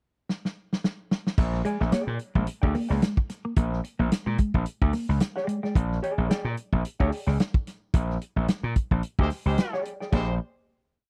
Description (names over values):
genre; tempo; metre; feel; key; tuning
funk; 110 BPM; 4/4; swing 56% on 16ths; Bb mixolydian; A4 = 440 Hz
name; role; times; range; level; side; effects
warm soul drum kit; drums; 0.3-10.3 s; crash cymbal, hi-hat, kick drum, snare drum; -27 LUFS; equal; none
gritty slap bass; bass; 1.4-10.4 s; Bb1 to Bb2; -28 LUFS; equal; overdrive
clean electric guitar; riff; 1.5-5.7, 10.1-10.3 s; Ab3 to Bb3; -33 LUFS; equal; phaser
hollow-body jazz guitar; accompaniment; 1.6-10.3 s; Ab4 to Ab5; -34 LUFS; equal; none
clear horn section; second line; 9.2-10.3 s; Ab3 to C5; -34 LUFS; equal; none
room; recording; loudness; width
studio reverb; dry, close 1970s-style studio recording; -27 LUFS; mono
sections
0.0-1.4 pickup bar; 1.4-10.1 A section; 10.1-11.1 final chord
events
drum fill 0.3-1.4; band accent 7.9-10.1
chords
0.0 N.C.; 1.4 Bb6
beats
0.29 0.83 | 1.38 1.93 2.47 3.02 | 3.57 4.11 4.66 5.21 | 5.75 6.30 6.84 7.39 | 7.94 8.48 9.03 9.58 | 10.12